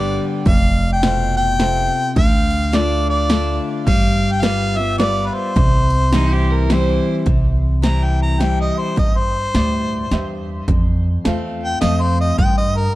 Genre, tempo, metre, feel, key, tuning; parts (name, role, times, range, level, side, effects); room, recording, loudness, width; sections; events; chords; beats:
honky-tonk and classic country; 106 BPM; 3/4; swing 60% on 8ths; C major; A4 = 436 Hz
clear harmonica; melody; 0.0-12.9 s; Bb4 to Bb5; -21 LUFS; left 1 dB; tape echo
picked steel-string acoustic guitar; accompaniment; 0.0-13.0 s; F2 to G4; -22 LUFS; left 3 dB
warm upright piano; accompaniment; 0.0-12.3 s; F4 to F5; -29 LUFS; right 4 dB
upright bass; bass; 0.0-12.9 s; F1 to G2; -19 LUFS; right 1 dB
house drum kit; drums; 0.5-12.5 s; hi-hat, kick drum, ride cymbal, snare drum; -18 LUFS; equal
clear fiddle; second line; 6.1-7.1 s; Eb4 to C5; -24 LUFS; right 4 dB
little or no reverb; dark, warm production; -15 LUFS; side -16 dB against mid
0.0-7.3 A section; 7.3-13.0 B section
harmonica solo 7.3-13.0
0.5 F; 2.2 Dm; 3.9 G7; 5.6 C; 10.7 F; 12.4 N.C.
| 0.47 1.03 1.60 | 2.17 2.73 3.30 | 3.87 4.44 5.00 | 5.57 6.14 6.71 | 7.27 7.84 8.41 | 8.98 9.55 10.12 | 10.69 11.25 11.82 | 12.39